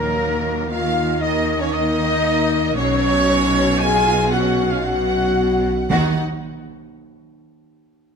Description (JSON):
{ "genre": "cinematic, epic orchestral film score", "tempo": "116 BPM", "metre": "3/4", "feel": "straight", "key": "Eb minor", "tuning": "A4 = 443 Hz", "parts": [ { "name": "warm symphonic violin section", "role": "melody", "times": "0.0-6.2 s", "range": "Bb4 to Ab5", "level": "-28 LUFS", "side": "left 3 dB", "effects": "none" }, { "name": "concert flute", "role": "second line", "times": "0.0-6.2 s", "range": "Bb4 to Ab5", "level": "-27 LUFS", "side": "left 1 dB", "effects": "none" }, { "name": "warm symphonic violin section", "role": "second line", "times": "0.0-6.2 s", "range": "Bb4 to Ab5", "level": "-28 LUFS", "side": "left 2 dB", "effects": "none" }, { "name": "rich studio viola section", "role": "accompaniment", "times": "0.0-6.2 s", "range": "Gb3 to F4", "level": "-28 LUFS", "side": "right 2 dB", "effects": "none" }, { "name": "dark French horn section", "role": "sustained chords", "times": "0.0-6.1 s", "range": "Bb3 to Ab4", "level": "-21 LUFS", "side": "left 5 dB", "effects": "none" }, { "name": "warm trumpet section", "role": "stabs", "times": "0.0-6.1 s", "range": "Gb4 to Ab5", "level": "-24 LUFS", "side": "right 3 dB", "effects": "none" }, { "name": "rich symphonic cello section", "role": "bass", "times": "0.0-6.2 s", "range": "B2 to Eb3", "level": "-26 LUFS", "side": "right 4 dB", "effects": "none" }, { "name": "rich symphonic double bass section", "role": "bass", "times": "0.0-6.2 s", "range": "B1 to Eb2", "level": "-25 LUFS", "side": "right 4 dB", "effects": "none" }, { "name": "timpani", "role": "percussion", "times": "0.0-0.4, 5.9-6.1 s", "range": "Eb3", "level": "-28 LUFS", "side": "equal", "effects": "none" } ], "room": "wet scoring stage reverb, RT60 1.7 s", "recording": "none", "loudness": "-16 LUFS", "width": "side -6 dB against mid", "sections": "0.0-5.9 A section; 5.9-7.5 B section", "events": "none", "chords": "0.0 Ebmadd9; 2.8 Bsus2; 5.9 Ebm", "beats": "0.19 0.70 | 1.22 1.73 2.24 | 2.75 3.27 3.79 | 4.31 4.83 5.36 | 5.90" }